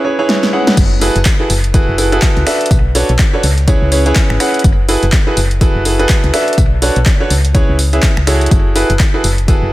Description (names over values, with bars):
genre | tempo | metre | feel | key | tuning
piano house | 124 BPM | 4/4 | swing 58% on 16ths | F# minor | A4 = 440 Hz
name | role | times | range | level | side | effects
clear concert grand piano | riff | 0.0-9.7 s | C#4 to F#5 | -15 LUFS | right 1 dB | sidechain pumping, analog delay
punchy analog drum machine | drums | 0.3-9.6 s | crash cymbal, finger snaps, handclaps, hi-hat, snare drum | -18 LUFS | equal | overdrive, analog delay
solid FM bass | bass | 0.8-9.7 s | F#1 to C#2 | -14 LUFS | equal | sidechain pumping
dusty soul sampler-style drum kit | drums | 0.8-9.6 s | hi-hat, snare drum, tambourine | -28 LUFS | left 2 dB | none
electronic kick drum | drums | 0.8-9.6 s | none | -12 LUFS | equal | overdrive
room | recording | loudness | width
light reverb, digital ambience | echo-heavy mix | -10 LUFS | side -17 dB against mid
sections
0.8-9.7 A section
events
break 0.0-0.8; drum fill 0.3-0.8; drop 0.8-9.7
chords
0.0 C#m7; 0.8 F#m11; 2.5 Bm9; 3.7 C#m7; 4.6 F#m11; 6.3 Bm9; 7.5 C#m7; 8.5 F#m11